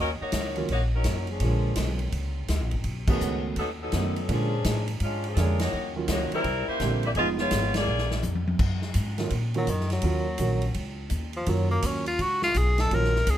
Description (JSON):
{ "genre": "jazz, big band swing", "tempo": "167 BPM", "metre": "4/4", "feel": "swing 65% on 8ths", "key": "Eb minor", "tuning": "A4 = 439 Hz", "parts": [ { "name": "warm saxophone section", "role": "melody", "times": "0.0-8.2 s", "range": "F3 to Eb5", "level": "-29 LUFS", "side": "left 1 dB", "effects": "none" }, { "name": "upright bass", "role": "bass", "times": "0.0-13.4 s", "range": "F1 to Bb2", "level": "-27 LUFS", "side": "equal", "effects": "none" }, { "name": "swinging big-band drum kit", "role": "drums", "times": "0.3-13.4 s", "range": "crash cymbal, hi-hat, kick drum, ride cymbal, snare drum, toms", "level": "-32 LUFS", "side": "equal", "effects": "none" }, { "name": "warm concert grand piano", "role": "accompaniment", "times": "0.6-13.1 s", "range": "D3 to C#5", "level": "-31 LUFS", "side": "right 5 dB", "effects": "none" }, { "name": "clear tenor saxophone", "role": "melody", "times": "9.6-13.4 s", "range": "Eb3 to Bb4", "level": "-27 LUFS", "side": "left 1 dB", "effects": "none" } ], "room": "light reverb", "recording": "close, detailed microphones", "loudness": "-24 LUFS", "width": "side -11 dB against mid", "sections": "0.0-8.6 A section; 8.6-13.4 B section", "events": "band accent 3.0, 5.5, 7.7; drum fill 7.9-8.6; tenor saxophone solo 8.6-13.4", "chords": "0.0 Ebm7; 1.4 Bb7#9; 2.8 B7; 4.3 Bb7#9; 5.7 Ebm7; 6.4 C7; 7.2 Fm7b5; 7.9 Bb7; 8.6 Ebm7" }